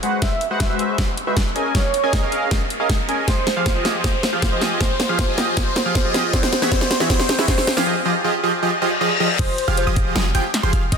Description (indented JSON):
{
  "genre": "future bass",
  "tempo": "157 BPM",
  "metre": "4/4",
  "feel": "half-time",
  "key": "F minor",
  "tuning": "A4 = 441 Hz",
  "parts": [
    { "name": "big bright polysynth", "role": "riff", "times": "0.0-11.0 s", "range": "E3 to Ab5", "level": "-21 LUFS", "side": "right 1 dB", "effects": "chorus, sidechain pumping, digital delay" },
    { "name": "warm 808-style bass", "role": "bass", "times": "0.0-11.0 s", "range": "F1 to Ab2", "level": "-24 LUFS", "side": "equal", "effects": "sidechain pumping, high-pass filter" },
    { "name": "dubstep drum kit", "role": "drums", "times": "0.0-11.0 s", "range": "crash cymbal, hi-hat, snare drum", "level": "-23 LUFS", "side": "equal", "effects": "studio reverb" },
    { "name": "riser and reverse cymbal", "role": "sound effects", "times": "0.0-9.4 s", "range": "none", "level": "-28 LUFS", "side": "left 5 dB", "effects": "none" },
    { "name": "warm velvety synth lead", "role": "melody", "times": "0.2-11.0 s", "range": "C5 to E5", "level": "-26 LUFS", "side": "right 2 dB", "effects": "chorus, sidechain pumping, digital delay" },
    { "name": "electronic kick drum", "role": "drums", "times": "0.2-11.0 s", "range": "none", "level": "-21 LUFS", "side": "equal", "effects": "studio reverb" },
    { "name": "wide unison pluck", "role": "arpeggios", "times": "9.4-11.0 s", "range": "C6 to G6", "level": "-30 LUFS", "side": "moving between left 4 dB and right 5 dB", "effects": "auto-pan, sidechain pumping, digital delay" }
  ],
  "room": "moderate lush hall reverb, RT60 2.0 s",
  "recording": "dense, heavily limited modern master",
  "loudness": "-17 LUFS",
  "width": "side -6 dB against mid",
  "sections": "0.0-9.4 A section; 9.4-11.0 B section",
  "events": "build-up 0.0-9.4; drum fill 0.0-7.9; riser 0.0-7.9; reverse cymbal 8.8-9.4; drop 9.4-11.0",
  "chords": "0.0 Ab7alt; 1.6 Db6; 3.3 Fm9; 4.8 Bb7sus4; 6.1 Ab5; 7.7 Db (rootless); 9.4 Fm9"
}